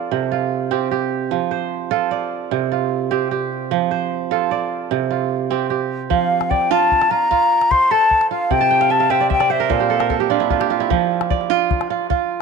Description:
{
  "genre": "west african traditional, West African string and xylophone music",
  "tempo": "100 BPM (dotted quarters)",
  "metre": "12/8",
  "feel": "straight",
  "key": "F major",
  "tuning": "A4 = 440 Hz",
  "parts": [
    { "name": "kora", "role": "arpeggios", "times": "0.0-12.4 s", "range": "Bb2 to A5", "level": "-19 LUFS", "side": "right 11 dB", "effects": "tape echo" },
    { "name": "breathy silver concert flute", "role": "melody", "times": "6.1-10.2 s", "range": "E5 to C6", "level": "-16 LUFS", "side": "left 4 dB", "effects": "none" },
    { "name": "calabash", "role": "percussion", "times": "6.1-12.2 s", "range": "none", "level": "-23 LUFS", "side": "left 5 dB", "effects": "none" }
  ],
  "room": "moderate plate reverb, RT60 3.4 s",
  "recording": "1960s-style stereo",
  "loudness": "-16 LUFS",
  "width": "side -4 dB against mid",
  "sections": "0.0-6.1 A section; 6.1-12.4 B section",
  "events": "kora fill 8.6-10.9",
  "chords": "0.1 C5; 1.3 F; 2.5 C5; 3.7 F; 4.9 C5; 6.1 F; 8.5 C5; 9.7 Bb; 10.9 F"
}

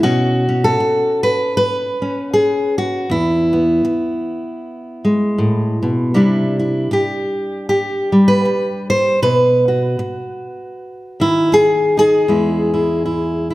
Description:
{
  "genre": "folk, solo fingerstyle acoustic guitar",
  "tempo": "78 BPM",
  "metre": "4/4",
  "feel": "swing 58% on 8ths",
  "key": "unclear",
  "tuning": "A4 = 443 Hz",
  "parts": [
    { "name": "fingerpicked steel-string acoustic guitar", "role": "solo", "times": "0.0-13.5 s", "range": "E2 to C5", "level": "-14 LUFS", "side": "equal", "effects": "none" }
  ],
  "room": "moderate recital hall reverb, RT60 1.6 s",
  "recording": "dark, warm production",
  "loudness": "-14 LUFS",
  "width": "side -17 dB against mid",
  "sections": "0.0-12.3 A section; 12.3-13.5 B section",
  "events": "none",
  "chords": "0.0 Bsus2; 3.1 E; 6.2 Cadd9; 9.2 B; 12.3 E"
}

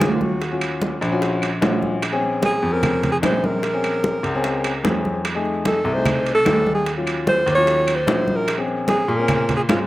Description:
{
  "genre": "Afro-Cuban jazz",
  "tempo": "149 BPM",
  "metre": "4/4",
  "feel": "straight",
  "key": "Bb minor",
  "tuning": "A4 = 435 Hz",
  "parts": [
    { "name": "breathy alto saxophone", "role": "melody", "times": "0.0-9.8 s", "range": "F4 to Db5", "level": "-21 LUFS", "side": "right 1 dB", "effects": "slapback echo" },
    { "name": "warm upright piano", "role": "accompaniment", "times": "0.0-9.9 s", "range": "Gb3 to Ab4", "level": "-25 LUFS", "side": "left 3 dB", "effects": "slapback echo" },
    { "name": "clear baby grand piano", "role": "bass", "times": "0.0-9.9 s", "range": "Bb1 to Bb2", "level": "-25 LUFS", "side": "equal", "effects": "none" },
    { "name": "bongos", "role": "percussion", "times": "0.0-9.9 s", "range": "none", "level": "-27 LUFS", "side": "left 3 dB", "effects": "none" },
    { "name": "claves", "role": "percussion", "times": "0.0-9.9 s", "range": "none", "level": "-32 LUFS", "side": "left 3 dB", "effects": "none" },
    { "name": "congas", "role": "percussion", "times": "0.0-9.9 s", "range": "none", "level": "-26 LUFS", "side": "equal", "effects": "none" },
    { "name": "timbales", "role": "percussion", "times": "0.0-9.9 s", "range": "none", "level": "-28 LUFS", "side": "right 6 dB", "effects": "none" }
  ],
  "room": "little or no reverb",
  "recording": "recorded outdoors, with no room sound",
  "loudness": "-17 LUFS",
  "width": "side -16 dB against mid",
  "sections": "0.0-9.9 A section",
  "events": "none",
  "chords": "0.0 Ebm7; 2.0 Bbm7; 5.3 F7#9; 6.9 Ebm7; 8.5 Bbm7"
}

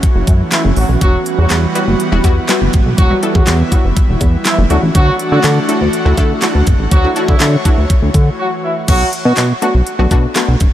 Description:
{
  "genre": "dance-pop",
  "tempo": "122 BPM",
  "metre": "4/4",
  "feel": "straight",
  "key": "B minor",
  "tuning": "A4 = 440 Hz",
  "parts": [
    { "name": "analog pluck", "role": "accompaniment", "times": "0.0-10.7 s", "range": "G3 to A4", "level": "-20 LUFS", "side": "left 2 dB", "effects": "chorus, sidechain pumping" },
    { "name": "airy breathy pad", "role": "sustained chords", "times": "0.0-8.9 s", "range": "E3 to C#5", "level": "-19 LUFS", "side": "right 1 dB", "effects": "chorus, sidechain pumping" },
    { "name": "pop drum kit", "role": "drums", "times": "0.0-10.7 s", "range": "crash cymbal, handclaps, hi-hat, kick drum, snare drum", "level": "-14 LUFS", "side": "equal", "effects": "none" },
    { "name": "chorused synth bass", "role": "bass", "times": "0.2-10.7 s", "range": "E1 to D3", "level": "-13 LUFS", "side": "equal", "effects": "sidechain pumping" },
    { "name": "warm horn section", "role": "melody", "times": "0.5-9.7 s", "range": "E3 to F#4", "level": "-20 LUFS", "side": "equal", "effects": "diffuse ambient delay" }
  ],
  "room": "light reverb, digital ambience",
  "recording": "none",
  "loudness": "-10 LUFS",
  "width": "side -12 dB against mid",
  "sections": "0.0-8.9 A section; 8.9-10.7 A section",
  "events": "drop 0.0-8.9, 8.9-10.7; break 8.4-8.9",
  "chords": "0.0 F#m7; 1.0 Emadd9; 4.7 Dadd9; 8.9 Bm7"
}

